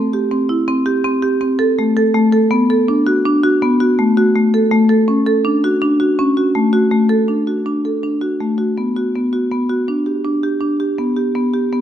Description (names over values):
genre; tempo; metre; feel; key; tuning
contemporary instrumental, chamber music in an uneven meter; 163 BPM; 7/4; straight; D major; A4 = 441 Hz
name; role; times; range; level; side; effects
marimba with medium mallets; solo; 0.0-11.8 s; A3 to A4; -13 LUFS; equal; none
room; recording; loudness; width
moderate scoring stage reverb, RT60 1.8 s; close, detailed microphones; -13 LUFS; side -10 dB against mid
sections
0.0-7.3 A section; 7.3-11.8 B section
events
none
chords
none